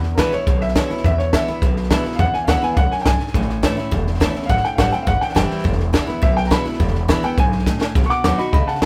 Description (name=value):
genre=rockabilly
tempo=208 BPM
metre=4/4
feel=straight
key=unclear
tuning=A4 = 440 Hz
part: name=warm upright piano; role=melody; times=0.0-8.9 s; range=A#4 to D6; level=-24 LUFS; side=equal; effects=none
part: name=picked steel-string acoustic guitar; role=accompaniment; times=0.0-8.9 s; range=E2 to F#4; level=-27 LUFS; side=equal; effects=none
part: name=upright bass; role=bass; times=0.0-8.9 s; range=E1 to E2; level=-23 LUFS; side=equal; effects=none
part: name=compact cocktail drum kit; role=drums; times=0.0-8.9 s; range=hi-hat, kick drum, snare drum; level=-22 LUFS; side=equal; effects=none
room=light reverb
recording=band playing live in one room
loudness=-18 LUFS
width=mono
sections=0.0-8.9 A section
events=upright piano solo 0.0-8.9; drum fill 7.7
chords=0.0 E; 3.3 A; 4.5 Am7; 5.6 E; 8.0 B